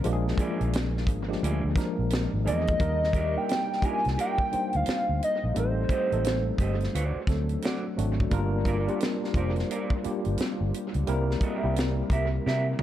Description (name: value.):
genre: R&B, neo-soul.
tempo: 87 BPM.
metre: 4/4.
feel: swing 62% on 16ths.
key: Eb major.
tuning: A4 = 440 Hz.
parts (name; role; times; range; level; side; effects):
tine electric piano; accompaniment; 0.0-12.8 s; F3 to C5; -30 LUFS; left 1 dB; overdrive, fast stereo tremolo, dub echo.
tight funk drum kit; drums; 0.0-12.8 s; hi-hat, kick drum, snare drum, toms; -30 LUFS; equal; dub echo.
vintage muted fingered electric bass; bass; 0.1-12.7 s; F1 to C3; -28 LUFS; equal; none.
electric guitar through a small old amp; second line; 0.4-12.7 s; F4 to E5; -35 LUFS; right 3 dB; spring reverb.
hollow square lead; melody; 2.5-6.9 s; C5 to Ab5; -28 LUFS; right 1 dB; chorus, dub echo.
room: light reverb, studio reverb.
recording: echo-heavy mix.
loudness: -24 LUFS.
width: side -12 dB against mid.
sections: 0.0-2.8 A section; 2.8-12.8 B section.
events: drum fill 12.4-12.8.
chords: 0.0 Bb7; 2.8 Ebmaj7; 5.6 Am7b5; 6.9 D7; 8.3 Gm7; 11.1 C7.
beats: | 0.04 0.73 1.42 2.10 | 2.79 3.48 4.17 4.86 | 5.55 6.24 6.93 7.62 | 8.31 9.00 9.69 10.38 | 11.07 11.76 12.45.